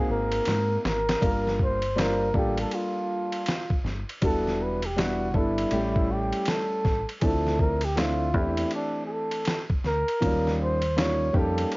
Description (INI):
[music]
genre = hip hop, jazz-hop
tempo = 80 BPM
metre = 4/4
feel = swing 63% on 16ths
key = G dorian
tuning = A4 = 440 Hz
[part]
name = trumpet with bucket mute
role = melody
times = 0.0-11.8 s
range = D4 to Db5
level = -28 LUFS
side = equal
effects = cassette tape
[part]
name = warm upright piano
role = accompaniment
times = 0.0-11.8 s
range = E3 to C5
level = -29 LUFS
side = equal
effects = cassette tape
[part]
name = deep dub fingered electric bass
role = bass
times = 0.1-11.6 s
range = E1 to Ab2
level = -30 LUFS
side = equal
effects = none
[part]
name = dusty soul sampler-style drum kit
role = drums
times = 0.3-11.8 s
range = hi-hat, kick drum, ride cymbal, snare drum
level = -29 LUFS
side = equal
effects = cassette tape
[sound]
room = light reverb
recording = home recording on cassette, vinyl crackle, nothing above 7.5 kHz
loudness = -23 LUFS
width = side -25 dB against mid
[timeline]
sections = 0.0-1.2 A section; 1.2-11.8 B section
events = drum fill 0.5-1.2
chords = 0.0 Ab9; 1.2 Gm9; 4.2 Em7; 5.7 A7; 7.2 Dm9; 10.2 Eb7